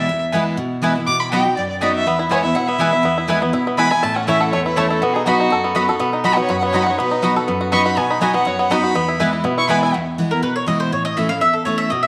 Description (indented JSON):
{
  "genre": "bluegrass",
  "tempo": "244 BPM",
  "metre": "4/4",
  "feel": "straight",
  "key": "E major",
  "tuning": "A4 = 440 Hz",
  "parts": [
    { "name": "dark fiddle", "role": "second line", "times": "0.0-9.9 s", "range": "F#4 to D6", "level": "-23 LUFS", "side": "equal", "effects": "none" },
    { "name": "picked steel-string acoustic guitar", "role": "accompaniment", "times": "0.0-12.1 s", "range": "E2 to F#4", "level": "-23 LUFS", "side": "equal", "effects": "none" },
    { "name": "mandolin", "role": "stabs", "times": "0.3-12.1 s", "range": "A3 to B5", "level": "-24 LUFS", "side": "equal", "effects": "none" },
    { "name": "bluegrass banjo", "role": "arpeggios", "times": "2.1-9.9 s", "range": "A3 to A4", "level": "-23 LUFS", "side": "equal", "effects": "none" }
  ],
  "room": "wet echo chamber reverb, RT60 1.4 s, studio reverb",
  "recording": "none",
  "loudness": "-18 LUFS",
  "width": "mono",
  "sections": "0.0-9.9 A section; 9.9-12.1 A section",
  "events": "fiddle solo 0.0-9.9; mandolin solo 9.9-12.1",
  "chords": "0.0 E; 1.1 B; 2.1 E; 4.0 A; 5.0 B; 9.0 E; 10.9 A"
}